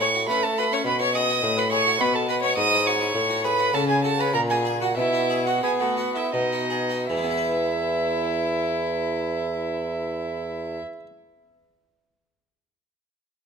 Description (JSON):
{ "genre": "classical, baroque-style sonata movement with continuo", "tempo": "77-106 BPM", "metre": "3/4", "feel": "straight", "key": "E major", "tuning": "A4 = 442 Hz", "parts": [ { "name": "rich violin", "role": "melody", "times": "0.0-10.8 s", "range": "D#4 to D#5", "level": "-28 LUFS", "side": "left 9 dB", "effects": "none" }, { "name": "rich violin", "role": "second line", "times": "0.0-10.8 s", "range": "D#5 to D#6", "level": "-25 LUFS", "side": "right 5 dB", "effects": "none" }, { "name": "harpsichord", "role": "accompaniment", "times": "0.0-11.1 s", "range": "G#2 to B4", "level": "-29 LUFS", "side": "left 2 dB", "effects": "none" }, { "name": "warm bassoon", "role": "bass", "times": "0.0-10.8 s", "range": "E2 to B3", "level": "-27 LUFS", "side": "right 1 dB", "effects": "none" } ], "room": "moderate recital hall reverb, RT60 1.6 s", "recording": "none", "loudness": "-21 LUFS", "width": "side -6 dB against mid", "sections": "0.0-7.1 A section; 7.1-11.7 B section", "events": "slowing down 2.3-7.1", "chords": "0.0 F#m/A; 0.9 B; 1.4 B5/A; 2.6 E/G#; 3.1 F#m/A; 4.3 F#/A#; 5.0 B5; 6.3 B; 7.1 E" }